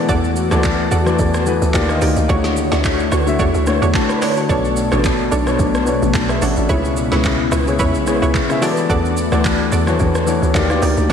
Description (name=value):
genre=amapiano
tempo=109 BPM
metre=4/4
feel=swing 55% on 16ths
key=unclear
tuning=A4 = 440 Hz
part: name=warm baby grand piano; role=accompaniment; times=0.0-11.1 s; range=B2 to B5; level=-19 LUFS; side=left 3 dB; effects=none
part: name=airy breathy pad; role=sustained chords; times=0.0-11.1 s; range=B2 to C#5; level=-22 LUFS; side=left 2 dB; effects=chorus, phaser, sidechain pumping
part: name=analog pluck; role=stabs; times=0.1-11.1 s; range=D4 to D5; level=-24 LUFS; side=right 4 dB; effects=chorus, diffuse ambient delay
part: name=hollow log drum bass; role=bass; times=0.1-11.1 s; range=A1 to E2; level=-19 LUFS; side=right 1 dB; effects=none
part: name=smooth R&B drum kit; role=drums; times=0.1-11.1 s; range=handclaps, hi-hat, kick drum, rim click, shaker, snare drum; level=-21 LUFS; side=right 1 dB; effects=none
room=wet lush hall reverb, RT60 2.6 s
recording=dreamy mix soaked in reverb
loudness=-14 LUFS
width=side -7 dB against mid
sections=0.0-11.1 A section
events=none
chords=0.0 E9sus4; 1.7 D#maj7; 2.3 Dmaj7; 4.5 Bm9; 6.7 C#m7; 8.6 E9sus4; 10.5 D#maj7